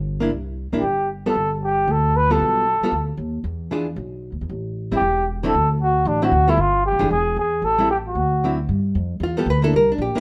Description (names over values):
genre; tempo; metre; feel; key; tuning
jazz, small-group swing and bop; 229 BPM; 4/4; swing 60% on 8ths; G mixolydian; A4 = 442 Hz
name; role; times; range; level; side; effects
upright bass; bass; 0.0-10.2 s; E1 to G2; -26 LUFS; equal; none
archtop guitar, miked and amplified; accompaniment; 0.2-10.2 s; D3 to B4; -24 LUFS; equal; none
trumpet with bucket mute; melody; 0.8-8.6 s; D4 to B4; -22 LUFS; equal; none
room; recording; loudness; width
light reverb; none; -20 LUFS; mono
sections
0.0-8.7 A section; 8.7-10.2 B section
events
none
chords
0.3 C7(no3); 1.4 G9; 3.4 E7b9; 4.5 Am7; 5.5 D; 6.6 Gsus2; 7.1 E; 7.6 Am7; 8.2 D9; 8.7 G9